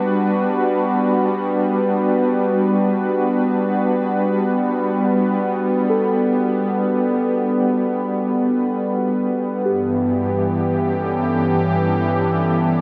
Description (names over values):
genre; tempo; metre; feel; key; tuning
ambient; free time; none; none; G lydian; A4 = 443 Hz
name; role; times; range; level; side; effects
warm analog pad; sustained chords; 0.0-12.8 s; G2 to B4; -19 LUFS; equal; chorus, tremolo
muted felt-like synth keys; arpeggios; 0.0-12.8 s; G4 to A4; -30 LUFS; equal; none
room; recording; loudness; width
wet cathedral reverb, RT60 6.5 s; in a vast, echoing space; -19 LUFS; mono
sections
0.0-12.8 A section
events
none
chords
0.0 Gmaj7; 9.7 A9/G